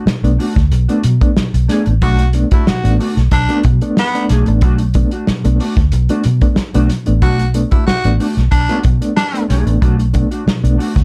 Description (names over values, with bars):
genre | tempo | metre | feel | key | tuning
funk | 92 BPM | 4/4 | straight | B minor | A4 = 440 Hz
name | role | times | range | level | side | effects
mellow electric guitar | accompaniment | 0.0-11.0 s | A3 to G#4 | -24 LUFS | equal | analog chorus
mellow reed electric piano | stabs | 0.1-10.9 s | B2 to D4 | -22 LUFS | equal | fast tremolo
vintage muted fingered electric bass | bass | 0.1-11.0 s | A1 to B2 | -16 LUFS | equal | none
warm soul drum kit | drums | 0.1-11.0 s | hi-hat, kick drum, snare drum | -18 LUFS | equal | none
raspy baritone saxophone | second line | 2.0-9.4 s | B3 to F#4 | -21 LUFS | equal | none
room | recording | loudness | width
little or no reverb | dark, warm production | -14 LUFS | mono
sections
0.0-11.0 A section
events
none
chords
0.0 Bm7